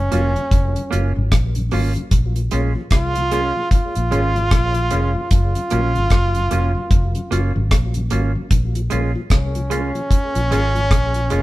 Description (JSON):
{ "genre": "roots reggae", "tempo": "75 BPM", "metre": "4/4", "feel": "swing 60% on 16ths", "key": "Bb minor", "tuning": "A4 = 440 Hz", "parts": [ { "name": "brilliant trombone", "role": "melody", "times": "0.0-11.4 s", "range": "Db4 to F4", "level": "-22 LUFS", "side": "right 1 dB", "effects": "none" }, { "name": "vintage muted fingered electric bass", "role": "bass", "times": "0.0-11.4 s", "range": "F1 to C2", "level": "-20 LUFS", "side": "equal", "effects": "none" }, { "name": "mellow tonewheel organ", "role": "accompaniment", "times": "0.1-11.4 s", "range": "Gb2 to F4", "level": "-29 LUFS", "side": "left 3 dB", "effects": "slow rotary speaker, tape echo" }, { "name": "semi-hollow electric guitar", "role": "accompaniment", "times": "0.1-11.4 s", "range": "Ab3 to F4", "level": "-25 LUFS", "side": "right 4 dB", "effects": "harmonic tremolo" }, { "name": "deep reggae drum kit", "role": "drums", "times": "0.1-11.4 s", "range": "hi-hat, kick drum, rim click", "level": "-18 LUFS", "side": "equal", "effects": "none" } ], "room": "light reverb", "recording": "band playing live in one room", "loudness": "-16 LUFS", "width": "side -17 dB against mid", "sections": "0.0-11.4 A section", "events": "none", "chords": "0.0 Gbmaj7; 2.1 Bbm7; 5.3 Gbmaj7; 8.5 Bbm7", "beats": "0.52 1.32 | 2.12 2.91 3.71 4.51 | 5.31 6.11 6.91 7.71 | 8.51 9.31 10.11 10.90" }